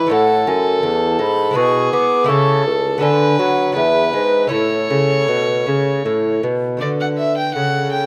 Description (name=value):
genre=classical, baroque-style sonata movement with continuo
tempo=81 BPM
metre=3/4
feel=uneven beats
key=A major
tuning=A4 = 440 Hz
part: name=baroque flute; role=melody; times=0.0-8.1 s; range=A4 to D6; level=-23 LUFS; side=equal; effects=none
part: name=warm violin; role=second line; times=0.0-8.1 s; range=G#4 to G5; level=-23 LUFS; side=equal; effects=none
part: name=lute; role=accompaniment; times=0.0-8.1 s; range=E2 to C#5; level=-24 LUFS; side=equal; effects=none
part: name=mellow bassoon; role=bass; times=0.0-8.1 s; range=C#2 to B3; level=-21 LUFS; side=equal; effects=none
room=moderate recital hall reverb, RT60 1.7 s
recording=close, detailed microphones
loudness=-17 LUFS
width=mono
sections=0.0-6.8 A section; 6.8-8.1 A section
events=none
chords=0.1 A; 1.6 E7/B; 2.3 A/C#; 3.0 Bm7/D; 3.8 E7; 4.5 A; 6.8 D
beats=| 0.12 0.84 1.56 | 2.29 3.02 3.76 | 4.52 5.29 6.05 | 6.82 7.56